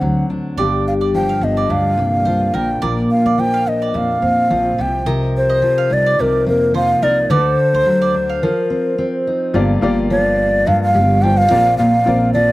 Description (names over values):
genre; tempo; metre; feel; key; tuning
acoustic pop; 107 BPM; 4/4; swing 55% on 16ths; G minor; A4 = 440 Hz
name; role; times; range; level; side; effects
breathy bright bass bansuri; melody; 0.0-12.5 s; Bb4 to G5; -16 LUFS; equal; slapback echo
fingerpicked steel-string acoustic guitar; accompaniment; 0.0-12.5 s; G2 to Bb4; -18 LUFS; equal; none
upright bass; bass; 0.0-12.5 s; G1 to G2; -23 LUFS; equal; none
mandolin; arpeggios; 0.6-8.7 s; Bb4 to F5; -25 LUFS; right 7 dB; slapback echo
warm upright piano; accompaniment; 9.5-12.5 s; Bb3 to D5; -22 LUFS; left 3 dB; none
room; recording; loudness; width
little or no reverb; recorded outdoors, with no room sound; -13 LUFS; side -18 dB against mid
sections
0.0-9.5 A section; 9.5-12.5 B section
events
break 8.4-9.5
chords
0.0 D7; 0.6 Gm7; 2.5 Bbadd9; 4.8 F7sus4/C; 7.3 D7; 8.4 F7sus4; 9.5 Gm7; 11.5 Bbadd9